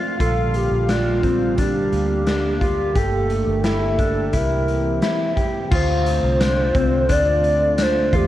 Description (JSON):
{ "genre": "dream pop", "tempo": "87 BPM", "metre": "4/4", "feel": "straight", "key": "D minor", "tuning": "A4 = 440 Hz", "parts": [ { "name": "warm analog pad", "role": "sustained chords", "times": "0.0-8.3 s", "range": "D3 to F5", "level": "-26 LUFS", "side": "right 1 dB", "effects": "chorus" }, { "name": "mellow electric guitar", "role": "arpeggios", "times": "0.0-8.3 s", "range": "C4 to G4", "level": "-24 LUFS", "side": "left 3 dB", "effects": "wide subtle chorus, tape echo" }, { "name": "vintage muted fingered electric bass", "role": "bass", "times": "0.0-8.3 s", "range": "G1 to F2", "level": "-23 LUFS", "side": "equal", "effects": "none" }, { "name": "warbly nostalgic lead", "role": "melody", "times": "0.2-8.3 s", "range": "F4 to D5", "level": "-22 LUFS", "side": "right 1 dB", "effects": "chorus" }, { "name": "raw garage drum kit", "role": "drums", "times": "0.2-8.3 s", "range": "crash cymbal, hi-hat, kick drum, snare drum, tambourine", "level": "-24 LUFS", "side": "equal", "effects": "none" } ], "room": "moderate echo chamber reverb, RT60 2.2 s", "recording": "dark, warm production", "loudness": "-17 LUFS", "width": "side -13 dB against mid", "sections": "0.0-5.7 A section; 5.7-8.3 B section", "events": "none", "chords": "0.2 Bb6; 3.0 Gmadd9; 4.3 C7; 5.7 Dm7" }